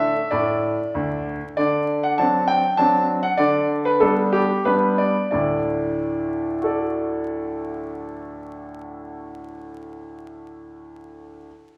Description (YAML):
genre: classical-period piano sonatina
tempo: 89-101 BPM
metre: 3/4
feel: rubato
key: D major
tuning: A4 = 440 Hz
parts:
  - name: bright concert grand piano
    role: solo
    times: 0.0-11.5 s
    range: D2 to A5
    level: -23 LUFS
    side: equal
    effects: none
room: wet recital hall reverb, RT60 1.6 s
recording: vinyl crackle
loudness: -21 LUFS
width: mono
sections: 0.0-1.6 A section; 1.6-5.3 B section; 5.3-9.3 C section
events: slowing down 0.6-5.3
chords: 0.0 D5; 1.6 D7; 3.4 G/D; 5.3 D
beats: 0.32 0.95 | 1.57 2.18 2.78 | 3.38 4.01 4.66 | 5.33 5.97 6.62 | 7.28 7.93 8.60